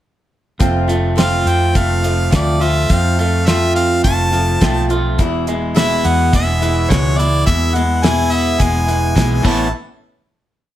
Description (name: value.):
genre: folk rock and heartland rock.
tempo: 105 BPM.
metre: 4/4.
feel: straight.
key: unclear.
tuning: A4 = 440 Hz.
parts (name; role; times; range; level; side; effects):
picked old ladder-braced acoustic guitar; accompaniment; 0.6-9.7 s; E2 to F4; -20 LUFS; left 2 dB; none.
electric guitar at the edge of break-up; riff; 0.6-9.7 s; E2 to F4; -21 LUFS; right 2 dB; none.
hollow-body short-scale fingered electric bass; bass; 0.6-9.7 s; E1 to F2; -18 LUFS; equal; none.
damped 70s drum kit; drums; 0.6-9.6 s; crash cymbal, hi-hat, kick drum, snare drum; -16 LUFS; equal; none.
bright harmonica; melody; 1.2-9.7 s; C#5 to A5; -19 LUFS; equal; none.
room: light reverb.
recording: none.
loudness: -13 LUFS.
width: side -12 dB against mid.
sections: 0.6-9.7 verse; 9.7-10.8 final hit.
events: none.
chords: 0.6 F; 5.2 E; 9.4 Aadd9; 9.7 N.C..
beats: | 0.61 1.18 1.75 2.33 | 2.90 3.48 4.05 4.62 | 5.19 5.76 6.33 6.90 | 7.47 8.04 8.60 9.17.